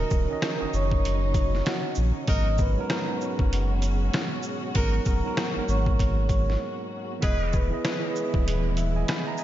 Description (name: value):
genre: hip hop, boom-bap hip-hop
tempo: 97 BPM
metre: 4/4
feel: swing 61% on 16ths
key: G# minor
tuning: A4 = 440 Hz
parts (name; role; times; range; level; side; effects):
- vibraphone with soft mallets; melody; 0.0-8.6 s; F#4 to D#6; -32 LUFS; equal; high-pass filter, low-pass filter, ping-pong delay
- tine electric piano; accompaniment; 0.0-9.4 s; G#2 to B5; -32 LUFS; right 4 dB; medium stereo tremolo, cassette tape, high-pass filter, low-pass filter
- warm studio string section; sustained chords; 0.0-9.4 s; B2 to F#4; -35 LUFS; equal; high-pass filter, low-pass filter
- warm sub bass; bass; 0.0-9.0 s; D#1 to A#1; -25 LUFS; equal; none
- trip hop sampler-style drum kit; drums; 0.1-9.4 s; hi-hat, kick drum, rim click, shaker, snare drum; -27 LUFS; equal; none
- muted trumpet section; stabs; 2.3-7.6 s; D#4 to B4; -40 LUFS; left 1 dB; high-pass filter, low-pass filter, ping-pong delay
room: light reverb, studio ambience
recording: nothing above 7.5 kHz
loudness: -23 LUFS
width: side -13 dB against mid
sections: 0.0-9.4 A section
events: break 6.6-7.2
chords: 0.0 D#m7; 2.3 G#m9; 7.2 Emaj7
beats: 0.42 1.04 1.66 | 2.28 2.90 3.52 4.13 | 4.75 5.37 5.99 6.61 | 7.23 7.85 8.46 9.08